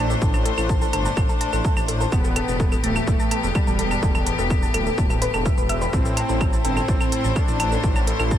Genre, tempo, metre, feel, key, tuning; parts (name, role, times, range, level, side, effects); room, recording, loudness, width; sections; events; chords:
melodic techno; 126 BPM; 4/4; straight; A minor; A4 = 444 Hz
wide unison lead; melody; 0.0-8.0 s; G3 to D4; -29 LUFS; right 1 dB; lush chorus, vintage 12-bit sampler grit, sidechain pumping, tape echo
rich chamber string section; sustained chords; 0.0-8.4 s; E3 to C5; -28 LUFS; left 4 dB; sidechain pumping
woody wave-folded pluck; arpeggios; 0.0-8.4 s; A4 to A6; -28 LUFS; left 1 dB; lush chorus, sidechain pumping, ping-pong delay
swelling detuned saw bass; bass; 0.0-8.4 s; D1 to A1; -25 LUFS; equal; sidechain pumping
swarming drone; drone; 0.2-8.4 s; A2; -33 LUFS; equal
electronic shaker, claves and hi-hat; drums; 0.1-8.4 s; -30 LUFS; right 2 dB
electronic kick drum; drums; 0.2-8.4 s; -21 LUFS; equal
light reverb, digital ambience; -18 LUFS; side -11 dB against mid
0.0-8.4 A section
0.0 Am; 2.1 Em; 5.9 Am